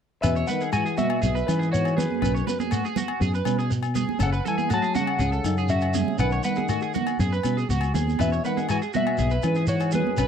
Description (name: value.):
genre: highlife guitar band.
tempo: 121 BPM.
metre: 4/4.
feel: straight.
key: E major.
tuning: A4 = 440 Hz.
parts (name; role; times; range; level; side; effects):
clean electric guitar; melody; 0.2-10.3 s; B4 to A5; -29 LUFS; left 3 dB; spring reverb, slapback echo.
mellow trombone; second line; 0.2-10.3 s; F#2 to F#3; -32 LUFS; left 13 dB; none.
mellow electric guitar; accompaniment; 0.2-10.3 s; G#3 to D#4; -32 LUFS; left 5 dB; spring reverb.
electric guitar at the edge of break-up; arpeggios; 0.2-10.3 s; F#4 to C#5; -30 LUFS; right 7 dB; analog chorus, slapback echo.
fingered electric bass; bass; 0.2-10.3 s; F#1 to E3; -24 LUFS; equal; none.
agogo bells; percussion; 0.2-10.3 s; none; -35 LUFS; left 20 dB; none.
shekere; percussion; 0.2-10.3 s; none; -30 LUFS; right 2 dB; none.
congas; percussion; 0.5-10.2 s; none; -30 LUFS; right 18 dB; none.
room: light reverb.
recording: dry, close 1970s-style studio recording.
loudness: -22 LUFS.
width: side -8 dB against mid.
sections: 0.2-10.3 A section.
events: none.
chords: 0.2 E; 2.2 B5; 4.2 F#m; 6.2 B; 8.2 E.